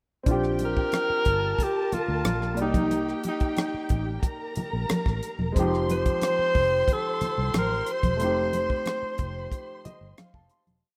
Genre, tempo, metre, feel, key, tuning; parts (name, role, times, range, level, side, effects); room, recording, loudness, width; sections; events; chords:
lush 1970s-style soul; 91 BPM; 4/4; straight; A4 = 439 Hz
warm concert grand piano; accompaniment; 0.2-10.9 s; F3 to C6; -34 LUFS; equal
warm studio violin section; second line; 0.3-10.8 s; G4 to C6; -37 LUFS; equal
vintage muted fingered electric bass; bass; 0.3-10.8 s; E1 to D2; -33 LUFS; equal
tight funk drum kit; drums; 0.3-10.8 s; hi-hat, kick drum, rim click; -30 LUFS; equal
congas; percussion; 0.3-10.8 s; -35 LUFS; equal
breathy tenor saxophone; melody; 0.7-10.2 s; Eb4 to C5; -29 LUFS; equal
moderate lush hall reverb, RT60 2.1 s; rough home demo mix; -26 LUFS; mono
0.3-10.8 A section
fade-out 8.2-10.8; grand piano fill 9.5-10.8
0.3 Bb6; 2.6 Cm9; 5.6 F7